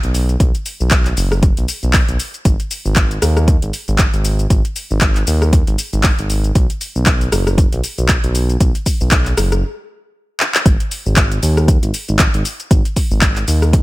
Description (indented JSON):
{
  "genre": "deep house",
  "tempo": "117 BPM",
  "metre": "4/4",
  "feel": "swing 57% on 16ths",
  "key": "unclear",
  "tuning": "A4 = 440 Hz",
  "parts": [
    { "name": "smooth synth bass", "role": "bass", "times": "0.0-13.8 s", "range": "F#1 to Eb2", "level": "-16 LUFS", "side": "equal", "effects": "sidechain pumping" },
    { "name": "deep house drum kit", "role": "drums", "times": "0.0-13.8 s", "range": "handclaps, hi-hat, rim click, shaker", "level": "-19 LUFS", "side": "left 1 dB", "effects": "overdrive" },
    { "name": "electronic kick drum", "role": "drums", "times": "0.4-13.8 s", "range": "none", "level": "-14 LUFS", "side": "equal", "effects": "overdrive" }
  ],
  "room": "little or no reverb",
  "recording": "none",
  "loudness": "-13 LUFS",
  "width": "side -19 dB against mid",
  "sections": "0.0-10.7 A section; 10.7-13.8 B section",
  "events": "stop 9.6-10.7; drum fill 10.4; drop 10.7-13.8",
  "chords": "none"
}